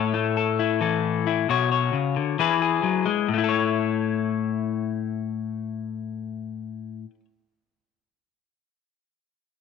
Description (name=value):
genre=highlife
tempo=134 BPM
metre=4/4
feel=swing 53% on 16ths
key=A major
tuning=A4 = 440 Hz
part: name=electric guitar at the edge of break-up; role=solo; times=0.0-7.2 s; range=A2 to C#5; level=-22 LUFS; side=left 8 dB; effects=none
room=moderate spring reverb, RT60 1.4 s, digital ambience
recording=none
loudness=-22 LUFS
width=side -5 dB against mid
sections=0.0-3.3 A section; 3.3-6.9 B section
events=none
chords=0.0 A; 1.5 Bsus2; 2.4 E; 3.3 A